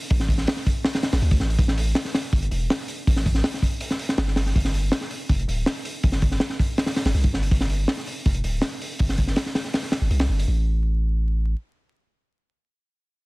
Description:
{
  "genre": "drum and bass, jungle",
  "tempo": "162 BPM",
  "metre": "4/4",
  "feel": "straight",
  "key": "unclear",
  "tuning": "A4 = 439 Hz",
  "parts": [
    { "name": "long sustained 808-style bass", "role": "bass", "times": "0.1-11.5 s", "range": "D1 to D2", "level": "-22 LUFS", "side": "equal", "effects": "none" },
    { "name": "crunchy breakbeat drum kit", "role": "drums", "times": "0.1-10.5 s", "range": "hi-hat, kick drum, snare drum", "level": "-22 LUFS", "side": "equal", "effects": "none" }
  ],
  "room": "little or no reverb",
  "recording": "dense, heavily limited modern master, vinyl crackle",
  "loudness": "-21 LUFS",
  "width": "side -24 dB against mid",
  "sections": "0.0-10.5 A section; 10.5-13.2 B section",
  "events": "none",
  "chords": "none"
}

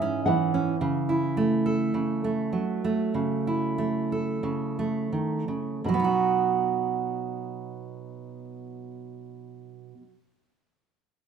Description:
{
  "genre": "acoustic folk-pop ballad",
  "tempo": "41-57 BPM",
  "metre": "4/4",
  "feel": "straight",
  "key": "B major",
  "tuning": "A4 = 440 Hz",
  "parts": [
    { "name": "nylon-string guitar", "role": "melody", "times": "0.0-9.9 s", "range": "E5 to B5", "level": "-28 LUFS", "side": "right 1 dB", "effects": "none" },
    { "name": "fingerpicked steel-string acoustic guitar", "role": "accompaniment", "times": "0.0-10.1 s", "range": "G#2 to A4", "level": "-25 LUFS", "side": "right 3 dB", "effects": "none" }
  ],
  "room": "light reverb",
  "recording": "minimal, uncompressed stereo recording",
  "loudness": "-24 LUFS",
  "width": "side -7 dB against mid",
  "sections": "0.0-5.8 A section; 5.8-11.3 B section",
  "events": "slowing down 0.0-5.8",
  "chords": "0.0 C#m; 0.8 F#m7/C#; 5.8 B"
}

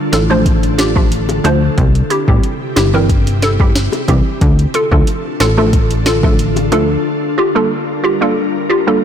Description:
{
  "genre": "dancehall",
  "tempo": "91 BPM",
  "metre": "4/4",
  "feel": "straight",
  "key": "D minor",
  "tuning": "A4 = 440 Hz",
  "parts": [
    { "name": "ethereal airy pad", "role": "sustained chords", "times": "0.0-9.0 s", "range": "C3 to Bb4", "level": "-20 LUFS", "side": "left 2 dB", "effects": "ensemble chorus, built-in reverb, sidechain pumping" },
    { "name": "hollow square pluck", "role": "accompaniment", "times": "0.1-9.0 s", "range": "E3 to C5", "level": "-16 LUFS", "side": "right 1 dB", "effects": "chorus, sidechain pumping" },
    { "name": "plucky analog bass", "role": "bass", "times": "0.1-7.0 s", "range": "G1 to D2", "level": "-15 LUFS", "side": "equal", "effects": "none" },
    { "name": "afro-pop drum kit", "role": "drums", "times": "0.1-6.9 s", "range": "hi-hat, kick drum, snare drum", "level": "-15 LUFS", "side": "equal", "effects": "none" },
    { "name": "bongos", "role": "percussion", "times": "0.1-6.9 s", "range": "none", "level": "-25 LUFS", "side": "left 7 dB", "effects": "none" }
  ],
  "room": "light reverb",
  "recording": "blown-out, overdriven recording, overdrive",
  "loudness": "-11 LUFS",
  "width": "side -8 dB against mid",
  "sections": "0.0-9.0 A section",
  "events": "drums muted 7.1-9.0",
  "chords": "0.0 Dm; 1.8 C; 4.4 Dm; 7.1 Gm7"
}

